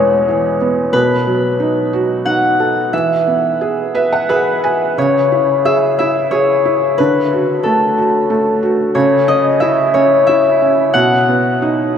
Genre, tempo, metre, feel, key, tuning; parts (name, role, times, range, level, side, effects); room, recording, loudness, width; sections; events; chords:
children's music, lullaby; 90 BPM; 3/4; rubato; A4 = 440 Hz
concert harp; melody; 0.0-12.0 s; A4 to F#5; -14 LUFS; left 3 dB
felt-muted upright piano; accompaniment; 0.0-12.0 s; E2 to G#5; -16 LUFS; right 3 dB
wet cathedral reverb, RT60 5.7 s; in a vast, echoing space; -12 LUFS; side -8 dB against mid
0.0-5.0 A section; 5.0-12.0 B section
felt piano fill 3.6-5.0
0.0 E; 0.9 B7; 2.9 E; 5.0 C#m; 7.0 D; 8.9 C#m; 10.9 B